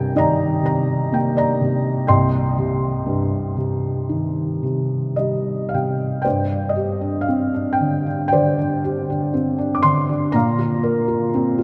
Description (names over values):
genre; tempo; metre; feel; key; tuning
classical, lyrical solo piano; 53-63 BPM; 4/4; rubato; C minor; A4 = 440 Hz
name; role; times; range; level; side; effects
felt-muted upright piano; solo; 0.0-11.6 s; C2 to D6; -20 LUFS; equal; none
room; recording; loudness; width
wet cathedral reverb, RT60 5.1 s; in a vast, echoing space; -20 LUFS; mono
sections
0.0-6.3 A section; 6.3-11.6 B section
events
felt piano fill 4.6-6.3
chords
0.0 Cm9; 2.1 Cm; 6.3 Gsus4; 10.3 Bbsus2